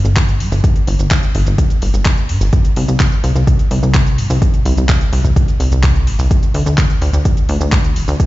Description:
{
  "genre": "progressive house",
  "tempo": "127 BPM",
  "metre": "4/4",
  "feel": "straight",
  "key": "unclear",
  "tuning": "A4 = 440 Hz",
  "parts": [
    { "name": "plucky analog bass", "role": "bass", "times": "0.0-8.2 s", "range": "D1 to G2", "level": "-14 LUFS", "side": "equal", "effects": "sidechain pumping" },
    { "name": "deep house drum kit", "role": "drums", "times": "0.0-8.3 s", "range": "handclaps, hi-hat, shaker", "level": "-23 LUFS", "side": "equal", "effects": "overdrive" },
    { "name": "electronic kick drum", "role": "drums", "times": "0.2-8.3 s", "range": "none", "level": "-13 LUFS", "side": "equal", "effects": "overdrive" }
  ],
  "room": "little or no reverb",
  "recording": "played on a big sound system in a bare room, large studio reverb, nothing above 7.6 kHz",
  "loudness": "-12 LUFS",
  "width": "side -17 dB against mid",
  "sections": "0.0-8.3 A section",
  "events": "none",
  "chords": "none"
}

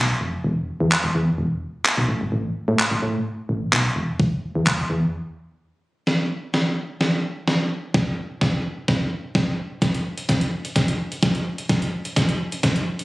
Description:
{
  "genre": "dance-pop",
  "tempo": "128 BPM",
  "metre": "4/4",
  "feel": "straight",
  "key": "unclear",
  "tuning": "A4 = 440 Hz",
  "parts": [
    { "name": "solid FM bass", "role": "bass", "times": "0.0-5.0 s", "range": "E1 to A2", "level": "-22 LUFS", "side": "equal", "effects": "sidechain pumping" },
    { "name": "gated 80s digital drum machine", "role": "drums", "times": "0.9-13.0 s", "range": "handclaps, hi-hat, kick drum, snare drum", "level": "-21 LUFS", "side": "equal", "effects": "gated reverb, gated reverb snare, overdrive" }
  ],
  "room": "moderate digital room reverb, RT60 1.2 s",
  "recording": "recorded on a phone in the room, studio reverb, compression",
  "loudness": "-20 LUFS",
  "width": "side -20 dB against mid",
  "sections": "0.0-6.1 A section; 6.1-13.0 B section",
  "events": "break 5.1-6.1; build-up 6.1-13.0; drum fill 6.1-13.0",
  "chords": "none"
}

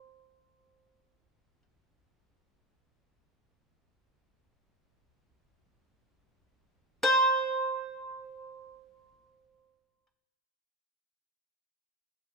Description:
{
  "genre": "caucasian folk, Caucasian lament",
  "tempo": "free time",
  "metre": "none",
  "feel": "none",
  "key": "unclear",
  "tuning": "A4 = 440 Hz",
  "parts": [
    { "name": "mandolin", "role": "solo", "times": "0.0-10.1 s", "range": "C5", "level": "-25 LUFS", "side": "right 1 dB", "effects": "none" }
  ],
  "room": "moderate recital hall reverb, RT60 1.5 s",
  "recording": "minimal, uncompressed stereo recording",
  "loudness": "-23 LUFS",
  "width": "side -2 dB against mid",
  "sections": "0.0-7.0 A section; 7.0-11.5 B section",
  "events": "slowing down 0.0-7.0",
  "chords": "none"
}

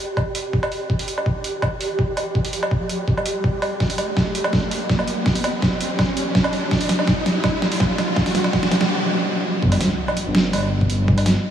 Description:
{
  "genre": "half-time drum and bass",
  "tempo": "165 BPM",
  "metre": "4/4",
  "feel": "half-time",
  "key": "unclear",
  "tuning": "A4 = 439 Hz",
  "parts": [
    { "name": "riser and sub drop", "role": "sound effects", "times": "1.0-11.1 s", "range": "none", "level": "-28 LUFS", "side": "equal", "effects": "none" },
    { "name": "pulsing gated texture", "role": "texture", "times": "0.0-8.9 s", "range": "G4", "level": "-30 LUFS", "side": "right 1 dB", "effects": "chorus, built-in reverb" },
    { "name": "boom bap sampler-style drum kit", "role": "drums", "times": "0.2-11.3 s", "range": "hi-hat, snare drum, woodblock", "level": "-21 LUFS", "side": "right 1 dB", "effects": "overdrive" },
    { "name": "electronic kick drum", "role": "drums", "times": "0.2-11.2 s", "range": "none", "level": "-22 LUFS", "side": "equal", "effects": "overdrive" },
    { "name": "dark detuned saw bass", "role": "bass", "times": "9.6-11.3 s", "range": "G1", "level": "-19 LUFS", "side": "equal", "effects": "none" }
  ],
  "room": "wet huge ambient reverb, RT60 7.3 s",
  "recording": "dreamy mix soaked in reverb",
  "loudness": "-18 LUFS",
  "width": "side -9 dB against mid",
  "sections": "0.0-9.6 A section; 9.6-11.5 B section",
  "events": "build-up 0.0-9.6; riser 1.0-8.9; drum fill 3.8-8.9; stop 8.9-9.6; drop 9.6-11.5; impact 9.6-11.1",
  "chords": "0.0 N.C.; 9.6 G5"
}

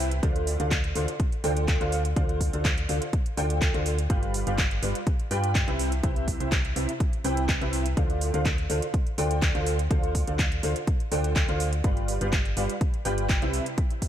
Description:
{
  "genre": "piano house",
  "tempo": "124 BPM",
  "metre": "4/4",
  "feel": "straight",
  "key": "D dorian",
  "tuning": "A4 = 443 Hz",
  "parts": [
    { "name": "clear concert grand piano", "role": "riff", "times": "0.0-13.6 s", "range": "C3 to G5", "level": "-29 LUFS", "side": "equal", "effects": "ensemble chorus, sidechain pumping, diffuse ambient delay" },
    { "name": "solid FM bass", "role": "bass", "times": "0.0-13.6 s", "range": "G1 to G2", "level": "-28 LUFS", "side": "equal", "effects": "sidechain pumping" },
    { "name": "house drum kit", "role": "drums", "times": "0.1-14.1 s", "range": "handclaps, hi-hat", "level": "-32 LUFS", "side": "right 1 dB", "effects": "none" },
    { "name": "electronic kick drum", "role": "drums", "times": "0.2-14.1 s", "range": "none", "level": "-26 LUFS", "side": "equal", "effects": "none" }
  ],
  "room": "light reverb",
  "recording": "none",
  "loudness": "-23 LUFS",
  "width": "side -10 dB against mid",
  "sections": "0.0-14.1 A section",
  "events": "none",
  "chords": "0.2 Dm7; 4.1 G7; 5.8 Cmaj7; 8.0 Dm7; 11.8 G7; 13.5 Cmaj7"
}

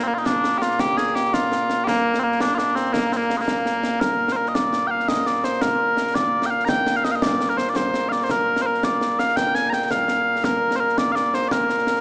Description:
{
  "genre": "scottish traditional, Scottish pipe music",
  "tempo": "112 BPM (dotted quarters)",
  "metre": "6/8",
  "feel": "straight",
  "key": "Bb major",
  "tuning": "A4 = 440 Hz",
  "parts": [
    { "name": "mellow small bagpipes", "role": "melody", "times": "0.0-12.0 s", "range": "Bb2 to Bb5", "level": "-22 LUFS", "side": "equal", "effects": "none" },
    { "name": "concert snare drum and concert bass drum", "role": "drums", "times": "0.2-12.0 s", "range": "none", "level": "-29 LUFS", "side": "equal", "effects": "none" }
  ],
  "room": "moderate concert hall reverb, RT60 2.0 s",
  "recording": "small speaker sound",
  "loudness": "-21 LUFS",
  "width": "mono",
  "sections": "0.0-4.0 A section; 4.0-12.0 A section",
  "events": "none",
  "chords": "none"
}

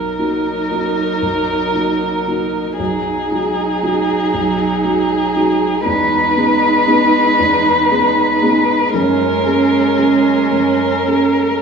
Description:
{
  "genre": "neoclassical piano and strings",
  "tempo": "116 BPM",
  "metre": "3/4",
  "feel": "rubato",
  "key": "G# minor",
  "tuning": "A4 = 439 Hz",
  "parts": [
    { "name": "dark violin", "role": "melody", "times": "0.0-11.6 s", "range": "G#4 to B4", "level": "-16 LUFS", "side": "left 2 dB", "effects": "none" },
    { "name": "rich cello", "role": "second line", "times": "0.0-11.6 s", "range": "F#3 to G#3", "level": "-24 LUFS", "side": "right 6 dB", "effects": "none" },
    { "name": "dark viola", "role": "accompaniment", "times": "0.0-11.6 s", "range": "C#4 to D#4", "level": "-20 LUFS", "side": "right 6 dB", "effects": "none" },
    { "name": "felt-muted upright piano", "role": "accompaniment", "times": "0.0-11.6 s", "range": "B1 to G#4", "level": "-18 LUFS", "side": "equal", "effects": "none" }
  ],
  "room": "wet recital hall reverb, RT60 1.4 s",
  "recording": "recorded in a church or concert hall, small room ambience",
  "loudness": "-13 LUFS",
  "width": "side -6 dB against mid",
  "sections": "0.0-11.6 A section",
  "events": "none",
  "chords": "0.0 Bmaj7; 2.8 G#m7/B; 5.9 Emaj7; 8.9 F#add9"
}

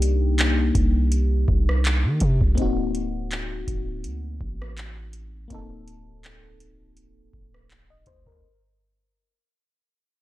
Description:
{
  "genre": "contemporary R&B",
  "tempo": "82 BPM",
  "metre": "4/4",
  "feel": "swing 54% on 16ths",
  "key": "unclear",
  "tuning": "A4 = 438 Hz",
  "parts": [
    { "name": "mellow FM electric piano", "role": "accompaniment", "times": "0.0-8.6 s", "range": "Bb3 to Eb5", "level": "-29 LUFS", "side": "left 4 dB", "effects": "chorus, phaser" },
    { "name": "long sustained 808-style bass", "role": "bass", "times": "0.0-8.4 s", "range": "D1 to Eb3", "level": "-23 LUFS", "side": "equal", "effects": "none" },
    { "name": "booming analog drum machine", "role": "drums", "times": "0.0-8.4 s", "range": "handclaps, hi-hat, kick drum, rim click", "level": "-25 LUFS", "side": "equal", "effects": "none" }
  ],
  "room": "digital ambience",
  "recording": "dark, warm production, faint mains hum",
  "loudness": "-20 LUFS",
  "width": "side -16 dB against mid",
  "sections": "0.0-8.4 A section",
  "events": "fade-out 0.0-8.4",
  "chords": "0.0 Cm7; 2.6 D7b9b13"
}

